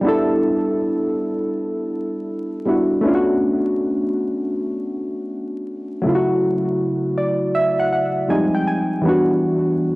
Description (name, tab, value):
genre	hip hop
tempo	80 BPM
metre	4/4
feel	swing 65% on 16ths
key	E dorian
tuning	A4 = 440 Hz
part	warm analog keys	solo	0.0-10.0 s	C#3 to Ab5	-18 LUFS	equal	chorus, cassette tape
room	moderate booth ambience, RT60 0.2 s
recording	home recording on cassette, vinyl crackle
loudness	-18 LUFS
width	side -21 dB against mid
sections	0.0-10.0 A section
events	synth keys fill 6.8-9.0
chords	0.0 Em9; 3.0 Bm9; 6.0 F#m7; 8.3 Fm9; 9.0 Em9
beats	| 0.04 0.79 1.54 2.29 | 3.04 3.79 4.54 5.29 | 6.04 6.79 7.54 8.29 | 9.04 9.79